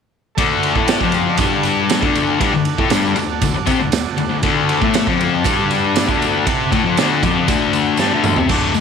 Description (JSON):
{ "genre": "garage rock duo or trio", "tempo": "118 BPM", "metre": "4/4", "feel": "straight", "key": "D mixolydian", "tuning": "A4 = 441 Hz", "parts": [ { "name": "overdriven combo organ", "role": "sustained chords", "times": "0.4-8.8 s", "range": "A4 to B5", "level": "-24 LUFS", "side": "right 13 dB", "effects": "lush chorus" }, { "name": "thick fuzz guitar", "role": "riff", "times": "0.4-8.8 s", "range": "D2 to C4", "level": "-16 LUFS", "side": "left 8 dB", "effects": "distortion" }, { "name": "raw garage drum kit", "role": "drums", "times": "0.4-8.8 s", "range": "crash cymbal, hi-hat, kick drum, ride cymbal, snare drum, toms", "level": "-20 LUFS", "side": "right 5 dB", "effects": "none" }, { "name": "tambourine", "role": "percussion", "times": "0.9-8.8 s", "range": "none", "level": "-32 LUFS", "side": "right 15 dB", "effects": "none" } ], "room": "small room ambience", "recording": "1960s-style stereo with parts hard left and right", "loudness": "-14 LUFS", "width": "side -6 dB against mid", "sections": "0.4-8.5 A section", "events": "transistor combo organ fill 7.0-8.5; drum fill 8.0-8.5", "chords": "0.4 D" }